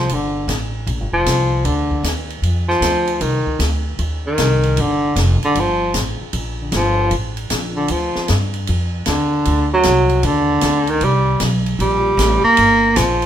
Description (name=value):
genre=jazz, small-group swing and bop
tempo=154 BPM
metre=4/4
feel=swing 66% on 8ths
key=G minor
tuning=A4 = 438 Hz
part: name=warm baritone saxophone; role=second line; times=0.0-13.3 s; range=D3 to Bb3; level=-16 LUFS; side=equal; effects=none
part: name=upright bass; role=bass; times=0.0-13.3 s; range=F1 to G2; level=-19 LUFS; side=equal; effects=none
part: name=open jazz drum kit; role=drums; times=0.1-13.3 s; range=hi-hat, kick drum, ride cymbal, snare drum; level=-24 LUFS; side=equal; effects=none
room=moderate club reverb, RT60 0.8 s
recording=minimal, uncompressed stereo recording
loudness=-15 LUFS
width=side -10 dB against mid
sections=0.0-13.3 A section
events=baritone saxophone solo 0.0-13.3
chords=0.0 G7(no3); 3.2 Cm; 4.8 Gm7; 9.5 D7b9; 11.0 C5; 12.6 Gm7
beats=| 0.11 0.50 0.89 1.28 | 1.67 2.06 2.45 2.83 | 3.22 3.61 4.00 4.39 | 4.78 5.17 5.56 5.95 | 6.34 6.73 7.12 7.51 | 7.90 8.29 8.68 9.07 | 9.46 9.85 10.24 10.63 | 11.02 11.41 11.80 12.19 | 12.58 12.97